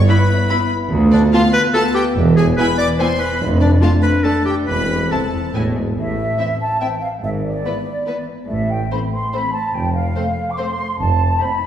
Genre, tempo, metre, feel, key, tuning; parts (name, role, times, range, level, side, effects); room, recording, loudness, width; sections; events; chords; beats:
cinematic, playful, whimsical film cue; 144 BPM; 3/4; straight; A minor; A4 = 440 Hz
rich studio violin section; second line; 0.0-11.7 s; C4 to D6; -27 LUFS; left 2 dB
dark French horn section; sustained chords; 0.0-11.6 s; E3 to F4; -25 LUFS; left 2 dB
warm studio violin section; melody; 0.1-11.7 s; B4 to B5; -29 LUFS; left 4 dB
clear clarinet; second line; 0.1-5.5 s; D4 to D5; -20 LUFS; left 1 dB
rich studio viola section; accompaniment; 0.1-11.7 s; A3 to F4; -27 LUFS; equal
warm studio cello section; bass; 0.9-11.3 s; C2 to A2; -22 LUFS; right 1 dB
warm studio double bass section; bass; 0.9-11.3 s; E1 to D2; -20 LUFS; right 2 dB
warm tuba; bass; 0.9-11.3 s; E1 to D2; -25 LUFS; right 2 dB
mellow flute section; second line; 6.0-11.7 s; D5 to D6; -21 LUFS; equal
wet scoring stage reverb, RT60 1.9 s; heard from further back in the room; -15 LUFS; side -10 dB against mid
0.0-6.0 A section; 6.0-11.7 B section
0.0 E5; 0.9 Bm7b5/D; 2.2 E; 3.4 Dm/F; 4.7 Am/E; 5.5 E; 6.0 Am; 7.2 E7/G#; 8.5 Am; 9.7 F; 11.0 F7
0.08 0.50 | 0.91 1.33 1.74 | 2.16 2.58 2.99 | 3.40 3.82 4.25 | 4.68 5.11 5.54 | 5.97 6.39 6.81 | 7.23 7.65 8.07 | 8.49 8.91 9.33 | 9.74 10.16 10.58 | 11.00 11.41